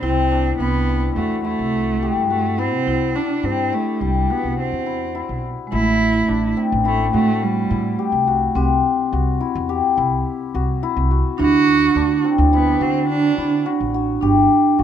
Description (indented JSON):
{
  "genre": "contemporary instrumental, chamber music in an uneven meter",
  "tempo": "106 BPM",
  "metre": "5/4",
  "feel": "straight",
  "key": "C lydian",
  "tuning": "A4 = 440 Hz",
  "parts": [
    { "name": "rich cello", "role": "melody", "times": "0.0-13.6 s", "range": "G3 to F#4", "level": "-22 LUFS", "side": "right 5 dB", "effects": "none" },
    { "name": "vibraphone with medium mallets", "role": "second line", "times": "0.0-14.8 s", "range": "Ab3 to E4", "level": "-21 LUFS", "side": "right 3 dB", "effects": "none" },
    { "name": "hammered dulcimer", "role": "arpeggios", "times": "0.0-14.8 s", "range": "C4 to G4", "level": "-22 LUFS", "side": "left 9 dB", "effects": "none" },
    { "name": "upright bass", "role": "bass", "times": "0.0-14.8 s", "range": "G1 to D3", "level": "-22 LUFS", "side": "right 1 dB", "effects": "none" }
  ],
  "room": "light reverb",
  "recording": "close, detailed microphones",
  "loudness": "-16 LUFS",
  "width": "side -9 dB against mid",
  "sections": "0.0-5.7 A section; 5.7-14.8 B section",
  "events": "none",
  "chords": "0.0 C6; 2.9 C; 5.7 Am7; 8.6 C; 11.4 D7; 14.2 G5"
}